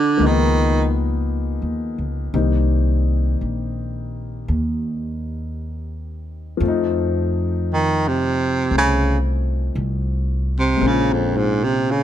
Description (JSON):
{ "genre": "jazz ballad", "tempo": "57 BPM", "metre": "4/4", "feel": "swing 68% on 8ths", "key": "unclear", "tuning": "A4 = 442 Hz", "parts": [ { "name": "breathy baritone saxophone", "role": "melody", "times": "0.0-0.9, 7.7-12.0 s", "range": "F2 to Eb3", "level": "-18 LUFS", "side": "right 3 dB", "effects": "none" }, { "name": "warm concert grand piano", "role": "accompaniment", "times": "0.0-12.0 s", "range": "Eb3 to F4", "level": "-24 LUFS", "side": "left 7 dB", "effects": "none" }, { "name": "upright bass", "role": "bass", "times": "0.2-12.0 s", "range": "Bb1 to F2", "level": "-21 LUFS", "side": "equal", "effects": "none" } ], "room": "light reverb", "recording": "close, detailed microphones", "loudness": "-18 LUFS", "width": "side -11 dB against mid", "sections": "0.0-12.0 A section", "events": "baritone saxophone solo 0.0-12.0", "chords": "0.2 Db13; 2.3 Cm7; 6.6 F7; 10.8 Bbm9", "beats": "0.19 1.26 | 2.33 3.41 4.48 5.55 | 6.61 7.66 8.71 9.76 | 10.80 11.85" }